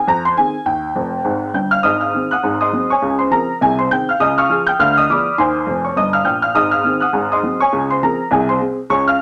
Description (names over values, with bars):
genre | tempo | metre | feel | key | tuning
jazz, stride piano | 204 BPM | 4/4 | swing 58% on 8ths | Ab major | A4 = 436 Hz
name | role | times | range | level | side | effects
clear upright piano | solo | 0.0-9.2 s | F1 to G6 | -16 LUFS | equal | none
room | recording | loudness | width
moderate small room reverb, RT60 0.5 s | none | -16 LUFS | mono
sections
0.0-1.8 A section; 1.8-9.2 B section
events
upright piano fill 1.0-1.8, 5.7-6.6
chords
0.1 Fm7; 0.7 Eb; 1.8 Ab; 2.4 Ab7; 3.0 Dbmaj7; 3.6 Ab/C; 4.2 Db; 4.8 Ddim7; 5.4 Ab/Eb; 6.0 Eb; 6.6 Ab; 7.1 Ab7; 7.7 Dbmaj7; 8.3 Ab/C